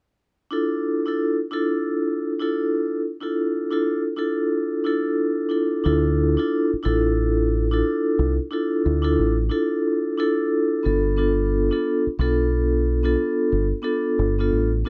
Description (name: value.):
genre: hip hop.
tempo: 90 BPM.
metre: 4/4.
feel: swing 63% on 16ths.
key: D dorian.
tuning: A4 = 440 Hz.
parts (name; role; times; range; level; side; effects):
vibraphone with medium mallets; accompaniment; 0.5-14.9 s; B3 to A4; -23 LUFS; equal; cassette tape, high-pass filter, low-pass filter.
deep dub fingered electric bass; bass; 5.9-14.8 s; G1 to D2; -24 LUFS; equal; none.
room: moderate studio reverb, RT60 0.6 s.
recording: none.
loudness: -22 LUFS.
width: mono.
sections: 0.5-5.9 A section; 5.9-14.9 B section.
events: none.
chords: 0.5 Dmadd9; 10.9 G7.